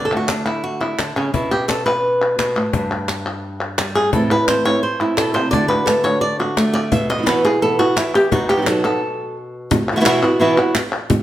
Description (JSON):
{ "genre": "flamenco", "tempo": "172 BPM", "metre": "4/4", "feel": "straight", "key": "unclear", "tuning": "A4 = 440 Hz", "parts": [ { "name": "flamenco guitar", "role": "melody", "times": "0.0-11.1 s", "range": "G2 to E5", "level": "-17 LUFS", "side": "equal", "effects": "none" }, { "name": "cajon", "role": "percussion", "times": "0.1-11.2 s", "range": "none", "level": "-24 LUFS", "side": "left 4 dB", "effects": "none" }, { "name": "palmas hand claps", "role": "percussion", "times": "0.1-11.1 s", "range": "none", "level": "-24 LUFS", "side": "equal", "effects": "none" }, { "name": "flamenco guitar", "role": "stabs", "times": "4.1-11.2 s", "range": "A2 to F#4", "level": "-21 LUFS", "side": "right 3 dB", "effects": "none" } ], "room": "moderate large studio reverb, RT60 1.1 s", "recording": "none", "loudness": "-15 LUFS", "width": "side -13 dB against mid", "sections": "0.0-9.7 A section; 9.7-11.2 B section", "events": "nylon-string guitar solo 0.0-9.7; stop 9.0-9.7", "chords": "0.0 D5; 1.3 Asus2; 2.7 G5; 4.1 Am; 5.5 D; 6.9 Bsus4; 8.3 B; 9.7 Bsus4", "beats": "0.29 0.64 0.98 | 1.33 1.68 2.03 2.38 | 2.73 3.08 3.43 3.78 | 4.13 4.48 4.83 5.18 | 5.53 5.88 6.22 6.57 | 6.92 7.27 7.62 7.97 | 8.32 8.67 9.01 9.36 | 9.71 10.06 10.40 10.75 | 11.10" }